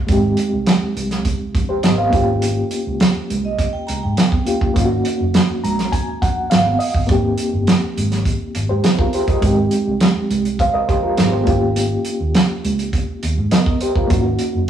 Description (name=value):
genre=lush 1970s-style soul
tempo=103 BPM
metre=4/4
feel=straight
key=Ab major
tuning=A4 = 440 Hz
part: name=reed electric piano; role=accompaniment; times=0.0-14.7 s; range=Ab3 to Bb5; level=-20 LUFS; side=equal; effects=fast tremolo
part: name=vintage muted fingered electric bass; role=bass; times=0.1-14.7 s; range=Gb1 to Ab2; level=-23 LUFS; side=equal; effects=none
part: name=warm soul drum kit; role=drums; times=0.1-14.5 s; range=hi-hat, kick drum, snare drum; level=-18 LUFS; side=right 1 dB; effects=none
part: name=congas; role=percussion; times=0.1-14.5 s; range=none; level=-27 LUFS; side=right 5 dB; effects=none
part: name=vibraphone with medium hard mallets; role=texture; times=3.4-4.7 s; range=Eb5 to Bb5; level=-26 LUFS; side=right 5 dB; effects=none
room=moderate stone room reverb, RT60 1.1 s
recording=rough rehearsal-room recording, warm saturation, small room ambience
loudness=-15 LUFS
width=side -9 dB against mid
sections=0.0-14.7 A section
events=reed electric piano fill 5.3-7.1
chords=0.1 Abmaj9; 2.1 Bbm13/Ab; 4.8 Gbmaj13; 7.1 Abmaj7; 9.4 Abmaj13; 11.5 Eb7/Ab; 14.1 Gbmaj13